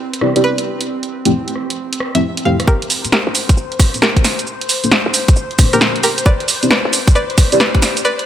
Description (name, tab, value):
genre	UK garage, two-step garage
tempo	134 BPM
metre	4/4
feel	swing 65% on 16ths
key	G dorian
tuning	A4 = 438 Hz
part	airy breathy pad	sustained chords	0.0-8.3 s	C4 to C5	-25 LUFS	left 2 dB	chorus, sidechain pumping
part	punchy analog drum machine	drums	0.1-8.3 s	hi-hat, rim click, shaker, snare drum	-16 LUFS	right 1 dB	none
part	deep mellow chord stab	stabs	0.2-7.6 s	F3 to D5	-18 LUFS	equal	chorus, phaser, dub echo
part	string-like resonator pluck	melody	0.4-8.3 s	G4 to F5	-20 LUFS	equal	chorus, dub echo
part	short 808-style bass	bass	2.7-7.9 s	D1 to A2	-26 LUFS	equal	high-pass filter
part	electronic kick drum	drums	2.7-7.8 s	none	-11 LUFS	equal	none
room	light reverb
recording	none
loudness	-12 LUFS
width	side -10 dB against mid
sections	0.0-2.7 A section; 2.7-8.3 B section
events	build-up 2.7-8.3; filter sweep on synth pluck 2.7-8.3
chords	0.0 Cmaj9; 0.9 Fmaj9; 2.7 Gm11; 6.3 Am11